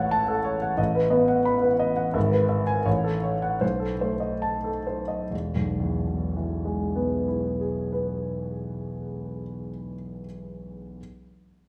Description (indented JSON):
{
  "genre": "classical, romantic character piece for solo piano",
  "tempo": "63-90 BPM",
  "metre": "2/4",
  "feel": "rubato",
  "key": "E major",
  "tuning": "A4 = 440 Hz",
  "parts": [
    { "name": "warm concert grand piano", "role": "solo", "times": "0.0-11.0 s", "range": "E1 to B5", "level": "-26 LUFS", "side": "equal", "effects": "none" }
  ],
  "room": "moderate recital hall reverb, RT60 1.8 s",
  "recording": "small room ambience",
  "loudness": "-26 LUFS",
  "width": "mono",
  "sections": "0.0-5.3 A section; 5.3-8.8 B section",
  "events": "slowing down 1.5-5.3",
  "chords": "0.0 F#m/A; 0.8 B7/A; 2.2 E/G#; 2.9 F#m/A; 3.6 B7b9; 5.3 E"
}